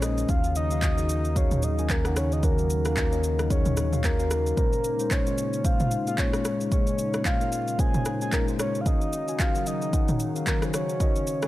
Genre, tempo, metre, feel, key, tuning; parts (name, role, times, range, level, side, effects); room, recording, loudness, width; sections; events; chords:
amapiano; 112 BPM; 4/4; swing 58% on 16ths; A4 = 440 Hz
soft octave-layered synth lead; melody; 0.0-11.5 s; Bb4 to Ab5; -30 LUFS; left 1 dB; chorus, tape echo
mellow tine electric piano; accompaniment; 0.0-11.5 s; Bb2 to Ab5; -30 LUFS; left 2 dB; wide subtle chorus
hollow soft pad; sustained chords; 0.0-11.5 s; Db3 to Eb4; -33 LUFS; left 1 dB; chorus
round analog bass; bass; 0.0-4.5 s; Bb1 to Eb2; -27 LUFS; equal
deep house drum kit; drums; 0.0-11.5 s; handclaps, kick drum, rim click, shaker, toms; -26 LUFS; equal; overdrive
little or no reverb; dry, gritty hardware recording; -23 LUFS; side -15 dB against mid
0.0-11.5 A section
0.3 Ebm9; 4.6 Bbm9; 8.9 Ebm9